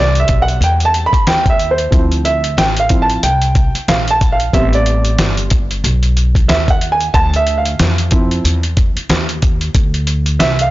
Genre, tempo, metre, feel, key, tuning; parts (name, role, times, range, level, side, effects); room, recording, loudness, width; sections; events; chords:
hip hop, jazz-hop; 92 BPM; 4/4; swing 58% on 16ths; D minor; A4 = 437 Hz
dark grand piano; accompaniment; 0.0-10.7 s; F3 to B5; -15 LUFS; right 2 dB
upright bass; bass; 0.0-10.7 s; G1 to F2; -16 LUFS; equal
dusty soul sampler-style drum kit; drums; 0.2-10.7 s; hi-hat, kick drum, snare drum; -15 LUFS; equal
small room ambience; blown-out, overdriven recording, overdrive, nothing above 7.5 kHz; -11 LUFS; side -16 dB against mid
0.0-10.7 A section
grand piano solo 0.0-10.7
0.0 Am9 (rootless); 1.9 Dm9; 4.5 Am9; 7.1 Dm9